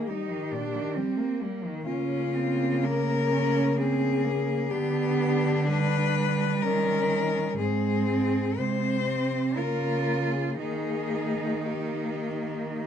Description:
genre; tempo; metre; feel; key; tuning
classical, lyrical piece for cello ensemble; 62 BPM; 3/4; uneven beats, rubato; unclear; A4 = 441 Hz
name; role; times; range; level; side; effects
rich cello; melody; 0.0-12.9 s; F4 to C5; -29 LUFS; left 6 dB; none
dark cello; second line; 0.0-12.9 s; G3 to F4; -30 LUFS; right 6 dB; none
warm cello; accompaniment; 0.0-12.9 s; Bb2 to D4; -33 LUFS; left 2 dB; none
warm cello; bass; 1.9-12.9 s; Ab2 to Eb3; -29 LUFS; right 1 dB; none
room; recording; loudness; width
moderate studio reverb, RT60 0.7 s; dark, warm production; -24 LUFS; side -8 dB against mid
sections
0.0-12.9 A section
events
none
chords
0.0 Eb/Bb; 1.9 Bbm/Db; 4.7 G/D; 6.6 Eb7; 7.6 Ab; 9.6 Bbm/Db; 10.6 Eb

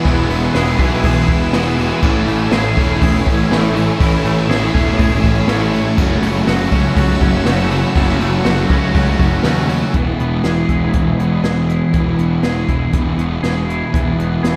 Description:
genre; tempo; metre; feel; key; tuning
rock, shoegaze and dream pop; 121 BPM; 4/4; straight; E major; A4 = 441 Hz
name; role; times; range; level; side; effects
soft string machine; sustained chords; 0.0-9.9 s; B4 to E6; -29 LUFS; equal; phaser, ensemble chorus
twangy electric guitar; arpeggios; 0.0-14.6 s; E3 to G#4; -27 LUFS; equal; analog chorus, tape echo
overdriven semi-hollow guitar; riff; 0.0-14.6 s; A2 to F#4; -24 LUFS; equal; none
sludgy distorted guitar; riff; 0.0-9.9 s; A2 to F#4; -25 LUFS; equal; overdrive
thick fuzz guitar; riff; 0.0-14.6 s; E2 to A3; -21 LUFS; equal; distortion, subtle chorus
fuzz picked electric bass; bass; 0.1-14.6 s; E1 to D#2; -22 LUFS; equal; overdrive
jazz brush drum kit; drums; 0.1-14.6 s; crash cymbal, hi-hat, kick drum, snare drum; -21 LUFS; equal; none
room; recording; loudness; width
wet lush hall reverb, RT60 1.7 s, small room ambience; dreamy mix soaked in reverb; -15 LUFS; mono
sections
0.0-9.9 A section; 9.9-14.6 B section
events
none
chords
0.0 Eadd9; 2.0 Amaj7; 6.0 F#m7; 9.9 E

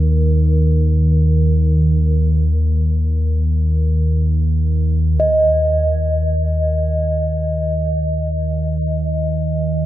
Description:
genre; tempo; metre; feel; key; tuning
dark ambient drone; free time; none; none; unclear; A4 = 442 Hz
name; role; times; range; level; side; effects
deep rumbling drone; drone; 0.0-9.9 s; Eb2 to Eb3; -15 LUFS; equal; built-in reverb
bronze singing bowl; texture; 0.0-9.9 s; Bb4 to Eb5; -22 LUFS; right 1 dB; none
room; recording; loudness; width
wet huge ambient reverb, RT60 7.5 s; none; -14 LUFS; side -13 dB against mid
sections
0.0-5.2 A section; 5.2-9.9 B section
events
filter sweep on synth drone 0.0-5.2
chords
0.0 Eb5; 5.2 N.C.

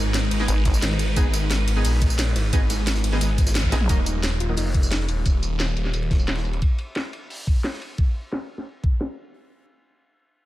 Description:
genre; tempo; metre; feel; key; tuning
dark technical drum and bass; 176 BPM; 4/4; straight; Eb minor; A4 = 439 Hz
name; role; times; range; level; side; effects
swarming drone; sustained chords; 0.0-3.9 s; Ab3 to Cb5; -31 LUFS; right 1 dB; built-in reverb, lush chorus, sidechain pumping
phased detuned saw bass; bass; 0.0-6.6 s; Eb1 to Bb1; -23 LUFS; equal; phaser, overdrive
crunchy breakbeat drum kit; drums; 0.1-7.9 s; hi-hat, ride cymbal, snare drum; -38 LUFS; equal; high-pass filter on cymbals, high-pass filter on hats, high-pass filter on snare, high-pass filter on room
drum and bass drum kit; drums; 0.1-9.2 s; hi-hat, ride cymbal, rim click, snare drum, tambourine, toms; -28 LUFS; equal; low-pass filter on hats, low-pass filter on cymbals, low-pass filter on perc, low-pass filter on snare, low-pass filter on toms, low-pass filter on room
orchestra-hit-like synth stab; stabs; 0.4-5.1 s; Gb3 to Ab4; -31 LUFS; right 1 dB; built-in reverb, analog delay
vowel-sweep wobble bass; bass; 0.5-0.8, 3.7-3.9 s; Ab1 to Bb1; -21 LUFS; equal; chorus
electronic kick drum; drums; 0.7-8.9 s; none; -20 LUFS; equal; none
soft round pluck; arpeggios; 4.1-5.0 s; Eb4 to F4; -34 LUFS; left 2 dB; chorus, sidechain pumping, analog delay
room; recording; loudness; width
digital ambience; none; -20 LUFS; side -16 dB against mid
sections
0.0-3.9 A section; 3.9-9.3 B section; 9.3-10.5 C section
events
drop 0.0-3.9; band accent 3.6; drum fill 3.7; filter sweep on drum 3.9-9.3; filter sweep on synth stab 3.9-5.3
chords
0.0 Abm; 3.9 Ebm; 9.3 N.C.

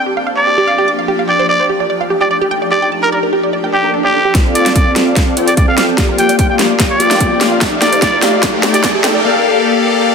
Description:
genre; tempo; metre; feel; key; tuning
future bass; 147 BPM; 4/4; half-time; Bb major; A4 = 440 Hz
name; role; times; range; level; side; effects
trumpet with straight mute; melody; 0.0-8.9 s; G4 to G5; -15 LUFS; equal; sidechain pumping, tape echo
shimmering ambient pad; sustained chords; 0.0-9.2 s; F3 to D5; -22 LUFS; left 2 dB; chorus, built-in reverb, phaser, sidechain pumping
wide unison pluck; arpeggios; 0.0-9.2 s; G4 to D6; -19 LUFS; right 4 dB; sidechain pumping, digital delay
swell and riser; sound effects; 3.6-9.2 s; none; -22 LUFS; right 2 dB; none
big bright polysynth; riff; 4.3-10.1 s; A3 to G5; -13 LUFS; left 2 dB; lush chorus, cassette tape, sidechain pumping
big-room dance drum kit; drums; 4.3-9.1 s; hi-hat, snare drum; -16 LUFS; equal; overdrive, high-pass filter on snare, studio reverb, high-pass filter on hats
electronic kick drum; drums; 4.3-8.9 s; none; -14 LUFS; equal; studio reverb
room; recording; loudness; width
moderate lush hall reverb, RT60 1.9 s; dense, heavily limited modern master, high-pass filter; -10 LUFS; side -6 dB against mid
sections
0.0-4.3 A section; 4.3-10.1 B section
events
swell 3.6-4.3; build-up 4.3-10.1; drum fill 4.3-9.2; riser 4.3-9.2; filter sweep on analog polysynth 4.3-10.1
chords
0.0 Bb6; 1.1 F13; 2.7 Gm9; 4.3 Dm7; 6.0 Bb6; 7.6 F13; 9.2 Gm9

